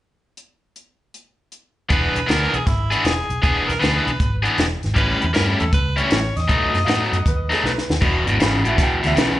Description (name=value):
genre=electric blues shuffle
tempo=157 BPM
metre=4/4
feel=swing 66% on 8ths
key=unclear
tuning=A4 = 440 Hz
part: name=compact cocktail drum kit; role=drums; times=0.4-9.3 s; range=crash cymbal, hi-hat, kick drum, snare drum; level=-22 LUFS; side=equal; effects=none
part: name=edgy tenor saxophone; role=melody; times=1.9-7.6 s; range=E4 to D#5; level=-25 LUFS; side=right 1 dB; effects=slapback echo
part: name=overdriven semi-hollow guitar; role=riff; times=1.9-9.4 s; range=E2 to G#4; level=-20 LUFS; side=left 2 dB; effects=none
part: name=vintage muted fingered electric bass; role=bass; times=1.9-9.4 s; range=E1 to A2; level=-23 LUFS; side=equal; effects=none
part: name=bright upright piano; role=second line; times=6.8-9.4 s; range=G#4 to B5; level=-27 LUFS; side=right 6 dB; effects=slapback echo
room=studio reverb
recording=live gig heard through the venue's PA, club ambience, nothing above 10.6 kHz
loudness=-16 LUFS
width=side -14 dB against mid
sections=0.4-1.9 A section; 1.9-8.0 B section; 8.0-9.4 C section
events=drum fill 7.6-8.0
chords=0.4 N.C.; 1.9 E7; 5.0 A7; 6.5 B7; 8.0 E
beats=| 0.36 0.74 1.13 1.51 | 1.89 2.27 2.66 3.04 | 3.42 3.81 4.19 4.57 | 4.95 5.34 5.72 6.10 | 6.48 6.87 7.25 7.63 | 8.01 8.39 8.77 9.15